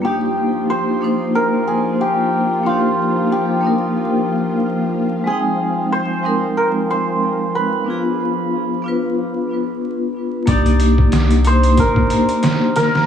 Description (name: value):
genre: trip hop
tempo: 92 BPM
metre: 4/4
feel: swing 57% on 16ths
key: C minor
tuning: A4 = 438 Hz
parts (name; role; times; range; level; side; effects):
- santur; melody; 0.0-13.1 s; F4 to D5; -20 LUFS; right 1 dB; tape echo
- vibraphone with medium hard mallets; accompaniment; 0.0-13.1 s; Ab3 to G5; -19 LUFS; left 1 dB; harmonic tremolo, tape echo
- string machine, cellos; sustained chords; 0.0-9.2 s; F3 to F4; -25 LUFS; left 1 dB; ensemble chorus
- soft dub sub bass; bass; 10.5-11.9 s; G1 to C2; -15 LUFS; equal; none
- trip hop sampler-style drum kit; drums; 10.5-13.1 s; hi-hat, kick drum, snare drum; -18 LUFS; right 1 dB; overdrive
room: light reverb, digital ambience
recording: vinyl crackle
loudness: -15 LUFS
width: side -8 dB against mid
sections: 0.0-10.5 A section; 10.5-13.1 B section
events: break 9.2-10.5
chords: 0.0 Cm9; 5.3 Fm7; 7.9 Fdim7; 10.5 Cm9